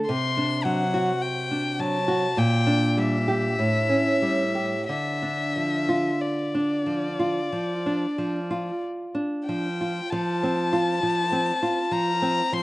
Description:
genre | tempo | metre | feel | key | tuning
romantic duo for violin and classical guitar | 45-53 BPM | 4/4 | rubato | D minor | A4 = 439 Hz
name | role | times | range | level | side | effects
nylon-string guitar | accompaniment | 0.0-12.6 s | A2 to G4 | -24 LUFS | right 1 dB | none
dark violin | melody | 0.1-12.6 s | D5 to C6 | -27 LUFS | left 3 dB | slapback echo
room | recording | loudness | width
light reverb | recorded outdoors, with no room sound, nothing above 10.4 kHz | -22 LUFS | side -18 dB against mid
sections
0.0-10.1 A section; 10.1-12.6 B section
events
none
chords
0.1 D7/C; 2.4 Gm/Bb; 3.6 A7; 4.9 Dm; 10.1 F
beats
| 0.09 1.23 2.38 3.60 | 4.89 6.22 7.53 8.83 | 10.12 11.33 12.54

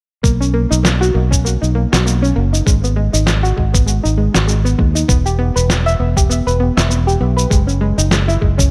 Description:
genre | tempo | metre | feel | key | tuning
sunset chillout | 99 BPM | 4/4 | swing 56% on 16ths | B major | A4 = 440 Hz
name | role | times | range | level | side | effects
soft round pluck | arpeggios | 0.2-8.7 s | G#3 to E5 | -21 LUFS | equal | chorus, delay
fingered electric bass | bass | 0.2-8.7 s | E1 to D#2 | -18 LUFS | equal | none
electronic cabasa and snare drum | drums | 0.2-8.7 s | none | -21 LUFS | equal | none
electronic kick drum | drums | 0.2-8.7 s | none | -17 LUFS | equal | none
room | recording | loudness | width
digital ambience | none | -15 LUFS | mono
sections
0.2-8.7 A section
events
none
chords
0.2 Bmaj9; 2.7 G#m7; 5.1 Em; 7.5 F#sus2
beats
| 0.24 0.85 1.45 2.06 | 2.66 3.27 3.88 4.48 | 5.09 5.70 6.30 6.91 | 7.51 8.12

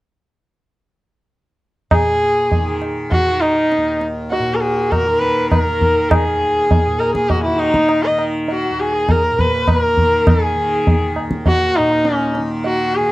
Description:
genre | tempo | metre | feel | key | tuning
indian classical, Hindustani | 100 BPM | 7/4 | straight | Eb raga bhairavi | A4 = 440 Hz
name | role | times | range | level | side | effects
rich sarangi | melody | 1.9-13.1 s | Eb4 to Eb5 | -16 LUFS | equal | none
tanpura | drone | 1.9-13.1 s | Eb2 to Eb3 | -24 LUFS | equal | none
tabla | percussion | 1.9-12.9 s | none | -18 LUFS | equal | none
dark cor anglais | second line | 2.1-13.1 s | Eb4 to Cb5 | -26 LUFS | left 5 dB | none
room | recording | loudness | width
light reverb | dry, close 1970s-style studio recording | -14 LUFS | side -18 dB against mid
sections
1.9-13.1 A section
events
none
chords
none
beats
| 1.91 2.51 3.11 3.71 4.31 4.91 5.51 | 6.11 6.70 7.30 7.90 8.49 9.09 9.69 | 10.28 10.87 11.47 12.06 12.65

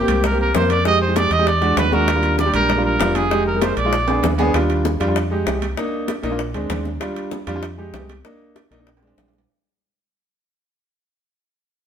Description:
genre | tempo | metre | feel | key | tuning
Afro-Cuban jazz | 195 BPM | 4/4 | straight | Eb major | A4 = 440 Hz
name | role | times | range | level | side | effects
warm trumpet | melody | 0.0-4.3 s | G4 to Eb5 | -20 LUFS | right 2 dB | none
warm concert grand piano | accompaniment | 0.0-9.4 s | G3 to Bb4 | -21 LUFS | right 1 dB | none
deep dub fingered electric bass | bass | 0.0-9.4 s | F1 to F2 | -23 LUFS | equal | none
bongos | percussion | 0.1-9.5 s | none | -28 LUFS | left 5 dB | none
congas | percussion | 0.1-9.5 s | none | -28 LUFS | left 2 dB | none
timbales | percussion | 0.1-9.5 s | none | -29 LUFS | right 3 dB | none
room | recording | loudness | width
wet stone room reverb, RT60 1.3 s | band playing live in one room | -16 LUFS | side -8 dB against mid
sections
0.0-4.5 A section; 4.5-9.5 B section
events
drum fill 4.1-4.5, 8.9-9.5; fade-out 4.5-9.5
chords
0.0 Abmaj9 (rootless); 0.9 Fm9; 1.5 E9; 2.1 Ebmaj9; 3.3 Fm7; 3.9 Bb7b9; 4.5 Ebmaj7; 5.2 Fm7; 5.8 Bbadd11; 6.4 Bb7; 7.0 Dmadd11; 7.6 Fm7; 8.2 Bbadd11; 8.9 Bb7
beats
0.24 0.55 | 0.85 1.16 1.47 1.77 | 2.08 2.39 2.70 3.00 | 3.31 3.62 3.92 4.23 | 4.54 4.85 5.16 5.46 | 5.77 6.08 6.39 6.70 | 7.01 7.32 7.63 7.93 | 8.24 8.55 8.87 9.18

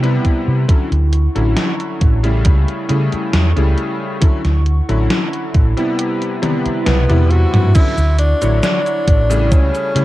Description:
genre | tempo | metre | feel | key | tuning
vaporwave | 68 BPM | 4/4 | straight | D major | A4 = 440 Hz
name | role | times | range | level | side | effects
clear electric grand piano | accompaniment | 0.0-10.0 s | C3 to C#5 | -20 LUFS | left 2 dB | analog chorus, vintage 12-bit sampler grit, analog delay
warbly tape-like pad | sustained chords | 0.0-10.0 s | B3 to C#6 | -26 LUFS | right 2 dB | chorus, built-in reverb
fingered electric bass | bass | 0.0-10.0 s | A1 to C#3 | -14 LUFS | equal | tube saturation
gated 80s digital drum machine | drums | 0.0-10.0 s | cabasa, crash cymbal, hi-hat, snare drum, toms | -21 LUFS | equal | gated reverb, gated reverb snare
electronic kick drum | drums | 0.2-9.7 s | none | -12 LUFS | equal | none
warm tenor saxophone | melody | 6.9-10.0 s | B3 to F#4 | -19 LUFS | equal | tape echo
room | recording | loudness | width
light reverb | dark, warm production | -13 LUFS | side -16 dB against mid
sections
0.0-7.7 A section; 7.7-10.0 B section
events
kick drops out 6.0-7.7; drum fill 6.4-7.7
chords
0.0 Cmaj7; 0.7 Dmaj9; 2.5 A7/C#; 4.2 Dmaj9; 6.0 Cmaj7; 7.7 Dmaj9; 9.5 A7/C#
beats
| 0.69 1.57 2.46 3.34 | 4.22 5.10 5.98 6.87 | 7.75 8.63 9.51

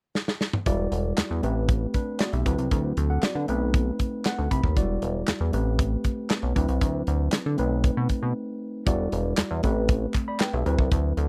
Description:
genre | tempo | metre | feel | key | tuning
early-eighties boogie funk | 117 BPM | 4/4 | straight | E minor | A4 = 438 Hz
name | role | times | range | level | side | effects
modern studio drum kit | drums | 0.2-11.3 s | handclaps, hi-hat, kick drum, snare drum, toms | -27 LUFS | equal | none
tine electric piano | accompaniment | 0.7-11.3 s | F#3 to B5 | -32 LUFS | equal | none
chorused synth bass | bass | 0.7-11.3 s | E1 to D3 | -28 LUFS | equal | none
group handclap | percussion | 9.4-10.5 s | none | -37 LUFS | equal | none
room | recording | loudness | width
little or no reverb | dry, close 1970s-style studio recording | -25 LUFS | mono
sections
0.7-8.9 A section; 8.9-11.3 B section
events
drum fill 0.1-0.7; tine electric piano fill 4.0-4.8; break 8.4-8.9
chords
0.0 N.C.; 0.7 Em9; 1.4 Am9; 2.5 D13; 3.5 B7b9; 4.8 Em9; 5.5 Am9; 6.6 D13; 7.6 B7b9; 8.9 Em9; 9.6 Am9; 10.7 D13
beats
0.15 | 0.66 1.17 1.69 2.20 | 2.71 3.23 3.74 4.25 | 4.76 5.28 5.79 6.30 | 6.82 7.33 7.84 8.35 | 8.87 9.38 9.89 10.40 | 10.92

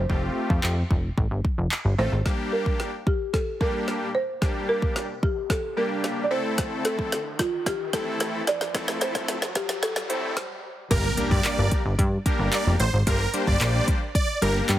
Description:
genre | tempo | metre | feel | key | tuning
dance-pop | 111 BPM | 4/4 | straight | G dorian | A4 = 440 Hz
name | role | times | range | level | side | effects
folk marimba with medium mallets | melody | 0.0-10.3 s | F4 to D5 | -29 LUFS | right 1 dB | tape echo
plucky analog bass | bass | 0.0-2.2, 10.9-14.8 s | F1 to G2 | -23 LUFS | equal | sidechain pumping
big bright polysynth | accompaniment | 0.1-14.8 s | G3 to C5 | -29 LUFS | left 1 dB | sidechain pumping
deep house drum kit | drums | 0.1-14.8 s | crash cymbal, handclaps, hi-hat, kick drum, snare drum | -26 LUFS | equal | none
riser and impact | sound effects | 3.9-13.1 s | none | -37 LUFS | equal | none
supersaw chords | melody | 10.9-14.5 s | Bb4 to D5 | -27 LUFS | right 2 dB | sidechain pumping, tape echo
room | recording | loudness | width
little or no reverb | heavily compressed radio sound, multiband compression, high-pass filter | -22 LUFS | side -13 dB against mid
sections
0.0-2.3 A section; 2.3-10.9 B section; 10.9-14.8 C section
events
build-up 2.3-10.9; drum fill 2.3-10.4; filter sweep 2.3-10.9; riser 3.9-10.9; stop 10.4-10.9; drop 10.9-14.8; impact 10.9-13.1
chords
0.0 Fadd9; 2.3 Gm; 6.3 Am; 10.6 N.C.; 10.9 Gm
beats
| 0.10 0.64 1.18 1.72 | 2.26 2.80 3.34 3.88 | 4.42 4.96 5.50 6.04 | 6.58 7.12 7.66 8.21 | 8.74 9.29 9.83 10.37 | 10.91 11.45 11.99 12.53 | 13.07 13.61 14.15 14.69

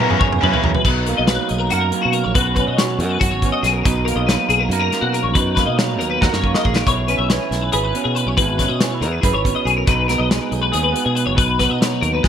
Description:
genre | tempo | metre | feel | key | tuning
math rock and midwest emo | 279 BPM (eighths) | 7/8 | straight | B major | A4 = 440 Hz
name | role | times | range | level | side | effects
electric guitar through a small old amp | accompaniment | 0.0-12.3 s | F#2 to B4 | -22 LUFS | right 7 dB | spring reverb
twelve-string electric guitar | arpeggios | 0.0-12.3 s | F#4 to E5 | -20 LUFS | left 6 dB | ensemble chorus, ping-pong delay
cranked stack guitar | riff | 0.0-0.7 s | C#3 to C#4 | -21 LUFS | left 2 dB | overdrive
loose indie drum kit | drums | 0.0-12.3 s | crash cymbal, hi-hat, kick drum, snare drum, toms | -20 LUFS | equal | none
fingered electric bass | bass | 0.1-12.3 s | F#1 to B2 | -22 LUFS | equal | none
room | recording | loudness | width
light reverb, small room ambience | bright 1980s-style digital production | -15 LUFS | side -8 dB against mid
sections
0.8-12.3 A section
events
drum fill 0.0-0.8, 6.2-6.8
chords
0.0 F#9sus4; 0.8 Bmaj7; 2.3 C#7sus4/B; 3.8 Bmaj7; 6.8 C#m7; 9.9 G#m/B; 11.4 B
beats
0.20 0.41 0.63 | 0.84 1.05 1.27 1.48 1.70 1.91 2.13 | 2.34 2.56 2.77 2.98 3.20 3.41 3.63 | 3.84 4.06 4.27 4.49 4.70 4.92 5.13 | 5.35 5.56 5.78 5.99 6.21 6.42 6.63 | 6.85 7.07 7.28 7.50 7.71 7.92 8.14 | 8.36 8.57 8.79 9.00 9.22 9.43 9.65 | 9.86 10.08 10.29 10.51 10.72 10.94 11.15 | 11.37 11.59 11.80 12.02 12.23

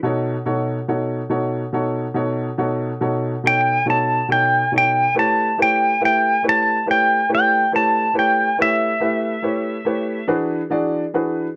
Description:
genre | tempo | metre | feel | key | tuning
blues | 47 BPM (dotted quarters) | 12/8 | straight | unclear | A4 = 442 Hz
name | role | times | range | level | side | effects
clear upright piano | accompaniment | 0.0-11.5 s | B2 to E5 | -23 LUFS | equal | none
clean lap steel guitar | melody | 3.5-10.3 s | E5 to A5 | -19 LUFS | equal | none
room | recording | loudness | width
light reverb | dry, close 1970s-style studio recording | -19 LUFS | mono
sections
0.0-11.6 A section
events
electric slide guitar solo 0.0-11.6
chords
0.0 B7; 5.2 A7; 10.3 E7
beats
| 0.03 1.31 2.60 3.88 | 5.16 6.44 7.72 9.00 | 10.29

